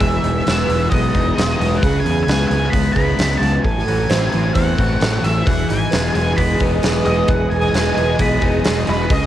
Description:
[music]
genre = rock, shoegaze and dream pop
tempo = 132 BPM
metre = 4/4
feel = straight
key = E major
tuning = A4 = 440 Hz
[part]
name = octave-fuzz lead guitar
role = melody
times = 0.0-9.3 s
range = B4 to B5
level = -23 LUFS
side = equal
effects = distortion, cassette tape, analog delay
[part]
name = picked plugged-in twelve-string acoustic guitar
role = arpeggios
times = 0.0-9.3 s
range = F#4 to C5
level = -25 LUFS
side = right 6 dB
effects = analog chorus, cassette tape, analog delay
[part]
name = raw garage guitar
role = riff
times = 0.0-9.3 s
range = A2 to C4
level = -23 LUFS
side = left 7 dB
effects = overdrive, analog chorus, cassette tape
[part]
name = semi-hollow electric guitar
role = riff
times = 0.0-9.3 s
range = A2 to F#4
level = -25 LUFS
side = right 7 dB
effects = reverse reverb, cassette tape
[part]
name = growling fingered electric bass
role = bass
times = 0.0-9.3 s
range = E1 to E2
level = -20 LUFS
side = equal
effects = overdrive
[part]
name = huge arena drum kit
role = drums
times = 0.0-9.2 s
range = hi-hat, kick drum, snare drum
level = -20 LUFS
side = equal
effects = cassette tape
[part]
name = soft string machine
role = sustained chords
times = 5.5-9.3 s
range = G#4 to D#6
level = -23 LUFS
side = equal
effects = ensemble chorus, cassette tape
[sound]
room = studio ambience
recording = home recording on cassette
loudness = -14 LUFS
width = side -12 dB against mid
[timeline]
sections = 0.0-9.3 A section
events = none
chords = 0.0 Emaj7; 1.8 C#m7; 3.6 Am6; 5.5 Emaj7

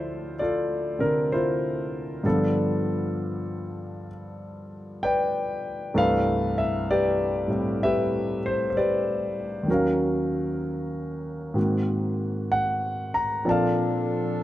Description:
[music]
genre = jazz ballad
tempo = 64 BPM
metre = 4/4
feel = swing 66% on 8ths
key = unclear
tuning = A4 = 440 Hz
[part]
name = warm concert grand piano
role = accompaniment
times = 0.0-14.4 s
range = C2 to A#5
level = -23 LUFS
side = equal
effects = none
[part]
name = clear saxophone section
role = sustained chords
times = 13.5-14.4 s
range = F3 to A4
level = -31 LUFS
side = right 2 dB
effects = none
[sound]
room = light reverb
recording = none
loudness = -23 LUFS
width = side -14 dB against mid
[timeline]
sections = 0.0-14.4 A section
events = none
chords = 0.0 Dm9; 2.2 G7; 6.0 Cmaj13; 9.7 Ebm7; 11.6 G#9; 13.5 Bbmaj7

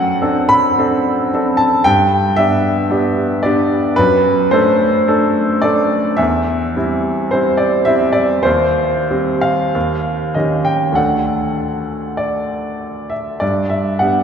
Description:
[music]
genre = classical, romantic nocturne for solo piano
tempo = 44-57 BPM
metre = 4/4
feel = rubato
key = unclear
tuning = A4 = 441 Hz
[part]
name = clear grand piano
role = solo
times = 0.0-14.2 s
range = D2 to B5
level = -13 LUFS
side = equal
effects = none
[sound]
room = wet cathedral reverb, RT60 3.9 s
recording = recorded in a church or concert hall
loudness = -13 LUFS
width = side -7 dB against mid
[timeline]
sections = 0.0-14.2 A section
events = none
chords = 0.0 D7/F#; 1.9 G; 4.0 D/F#; 6.2 C/E; 8.5 Cm/Eb; 9.7 Eb7; 11.0 D; 13.4 G

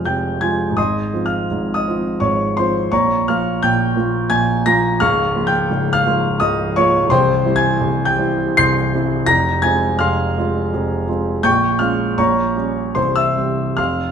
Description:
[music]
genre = classical, romantic character piece for solo piano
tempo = 70-88 BPM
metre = 3/4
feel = rubato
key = F minor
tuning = A4 = 440 Hz
[part]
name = warm grand piano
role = solo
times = 0.0-14.1 s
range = C1 to C7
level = -15 LUFS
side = equal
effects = none
[sound]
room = wet stone room reverb, RT60 1.3 s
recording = minimal, uncompressed stereo recording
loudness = -15 LUFS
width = side -7 dB against mid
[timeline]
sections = 0.0-14.1 A section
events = none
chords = 0.0 Fm; 0.8 Fm/Ab; 2.9 Bbm; 5.0 Bbm/Db; 7.1 C; 9.3 Fm; 11.4 Bbm7; 12.2 Gdim/Bb; 13.0 C

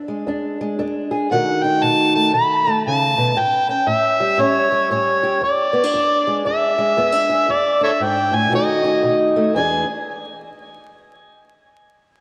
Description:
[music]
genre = acoustic country blues, solo or duo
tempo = 116 BPM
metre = 4/4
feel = swing 63% on 8ths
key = unclear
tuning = A4 = 440 Hz
[part]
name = fingerpicked old ladder-braced acoustic guitar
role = accompaniment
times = 0.0-9.9 s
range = E2 to G#4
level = -23 LUFS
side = equal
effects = lush chorus
[part]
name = overdriven harmonica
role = melody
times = 1.3-9.9 s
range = A4 to B5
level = -19 LUFS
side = equal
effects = diffuse ambient delay
[sound]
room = wet lush hall reverb, RT60 2.5 s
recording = dreamy mix soaked in reverb, vinyl crackle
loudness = -18 LUFS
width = mono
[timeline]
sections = 0.0-9.5 A section; 9.5-11.6 B section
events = none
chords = 0.0 E7; 1.3 B7; 3.4 A7; 5.4 E7; 8.5 B7; 9.5 E7

